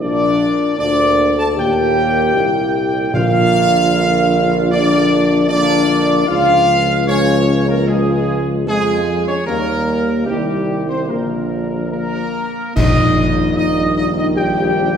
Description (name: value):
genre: classical, ceremonial fanfare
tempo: 76 BPM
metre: 4/4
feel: straight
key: unclear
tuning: A4 = 440 Hz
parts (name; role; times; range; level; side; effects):
- clear trumpet section; melody; 0.0-15.0 s; G4 to A5; -18 LUFS; equal; none
- dark French horn section; sustained chords; 0.0-15.0 s; G3 to A4; -19 LUFS; left 3 dB; none
- dark trombone section; sustained chords; 0.0-15.0 s; Bb2 to Bb3; -24 LUFS; right 3 dB; none
- warm tuba; bass; 0.0-15.0 s; Bb1 to F2; -19 LUFS; right 2 dB; none
- timpani; percussion; 3.1-4.3, 12.8-13.9 s; Bb2; -20 LUFS; left 2 dB; none
- clash cymbals and concert bass drum; percussion; 12.8-14.3 s; none; -21 LUFS; equal; none
room: wet scoring stage reverb, RT60 1.5 s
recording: heard from further back in the room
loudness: -13 LUFS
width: side -7 dB against mid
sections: 0.0-12.8 A section; 12.8-15.0 B section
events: band accent 12.8-13.6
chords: 0.0 Bb; 1.6 Eb; 3.1 Bb; 6.3 Db; 9.5 Eb; 11.1 Bb; 12.8 Eb/Bb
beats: | 0.01 0.79 1.57 2.35 | 3.14 3.92 4.71 5.49 | 6.28 7.08 7.88 8.68 | 9.47 10.27 11.10 11.92 | 12.77 13.58 14.37